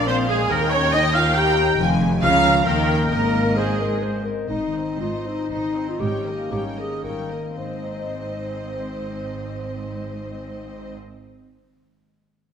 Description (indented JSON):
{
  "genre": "classical, dramatic, fast romantic movement for symphony orchestra",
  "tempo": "110-141 BPM",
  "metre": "3/4",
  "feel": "rubato",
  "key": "Ab major",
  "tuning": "A4 = 439 Hz",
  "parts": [
    { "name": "clear symphonic violin section", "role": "melody", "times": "0.0-10.9 s", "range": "C5 to Bb5", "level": "-33 LUFS", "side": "equal", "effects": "none" },
    { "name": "concert flute", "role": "second line", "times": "0.0-4.0 s", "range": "Ab4 to G5", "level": "-30 LUFS", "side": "equal", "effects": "none" },
    { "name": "warm oboe", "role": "second line", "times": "0.0-4.0 s", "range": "Ab4 to G5", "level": "-28 LUFS", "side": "right 2 dB", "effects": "none" },
    { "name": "warm symphonic violin section", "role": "second line", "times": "0.0-10.9 s", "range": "Ab4 to G5", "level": "-31 LUFS", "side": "right 1 dB", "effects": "none" },
    { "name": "clear symphonic viola section", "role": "accompaniment", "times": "0.0-10.9 s", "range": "G3 to G5", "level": "-26 LUFS", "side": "right 2 dB", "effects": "none" },
    { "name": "mellow French horn section", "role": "sustained chords", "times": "0.0-10.9 s", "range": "Ab3 to G4", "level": "-28 LUFS", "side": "left 3 dB", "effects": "none" },
    { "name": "concert harp", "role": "arpeggios", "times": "0.0-11.5 s", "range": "Ab2 to Eb5", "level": "-28 LUFS", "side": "left 5 dB", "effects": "none" },
    { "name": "clear symphonic double bass section", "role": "bass", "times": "0.0-10.9 s", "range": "F1 to Eb2", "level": "-29 LUFS", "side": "right 2 dB", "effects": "none" },
    { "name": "rich symphonic cello section", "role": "bass", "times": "0.0-11.0 s", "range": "Eb2 to Eb3", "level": "-28 LUFS", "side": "right 2 dB", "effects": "none" },
    { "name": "dark clarinet", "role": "second line", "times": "3.6-11.0 s", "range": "Eb4 to C5", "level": "-29 LUFS", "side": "left 2 dB", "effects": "none" }
  ],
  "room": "wet scoring stage reverb, RT60 1.6 s",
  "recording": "none",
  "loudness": "-19 LUFS",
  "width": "side -7 dB against mid",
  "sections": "0.0-4.5 A section; 4.5-7.6 B section; 7.6-10.5 C section",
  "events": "slowing down 3.8-7.6",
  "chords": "0.0 Bb7; 0.5 Eb; 1.8 Fm7; 2.2 Bbm7/Db; 2.7 Eb7; 3.1 Ab; 6.0 Eb7/Ab; 7.6 Ab"
}